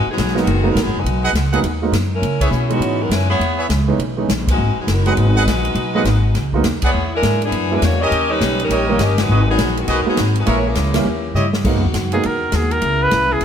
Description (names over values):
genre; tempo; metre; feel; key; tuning
jazz, big band swing; 204 BPM; 4/4; swing 62% on 8ths; G# minor; A4 = 443 Hz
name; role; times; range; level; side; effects
clear saxophone section; melody; 0.0-11.4 s; D#3 to D#5; -21 LUFS; left 2 dB; none
upright bass; bass; 0.0-13.4 s; F#1 to C#3; -18 LUFS; equal; none
swinging big-band drum kit; drums; 0.2-13.4 s; crash cymbal, hi-hat, kick drum, ride cymbal, snare drum, toms; -24 LUFS; left 1 dB; none
warm grand piano; accompaniment; 0.3-12.2 s; D#3 to E4; -21 LUFS; right 4 dB; none
clear trumpet section; stabs; 1.2-11.5 s; E4 to F#5; -23 LUFS; right 1 dB; none
mellow saxophone section; sustained chords; 11.7-13.4 s; C#3 to F#4; -26 LUFS; left 1 dB; none
clear trumpet; melody; 12.1-13.4 s; G#4 to B4; -17 LUFS; right 1 dB; none
room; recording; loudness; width
moderate echo chamber reverb, RT60 1.4 s; heard from further back in the room; -15 LUFS; side -8 dB against mid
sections
0.0-11.6 A section; 11.6-13.4 B section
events
band accent 2.4, 4.4, 6.8, 9.1, 10.9; drum fill 11.4; trumpet solo 11.6-13.4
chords
0.0 G#m7; 2.2 C#m7; 4.6 G#m7; 6.9 E7; 8.1 D#7; 9.3 G#m7; 10.5 A#m7b5; 11.1 D#7b9; 11.6 G#m7; 12.8 C#m7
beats
0.17 0.46 0.76 | 1.05 1.34 1.64 1.93 | 2.23 2.52 2.81 3.11 | 3.40 3.70 3.99 4.29 | 4.58 4.88 5.17 5.46 | 5.76 6.05 6.35 6.64 | 6.93 7.23 7.52 7.82 | 8.11 8.41 8.70 9.00 | 9.29 9.59 9.88 10.17 | 10.47 10.76 11.06 11.35 | 11.65 11.94 12.23 12.53 | 12.82 13.12 13.41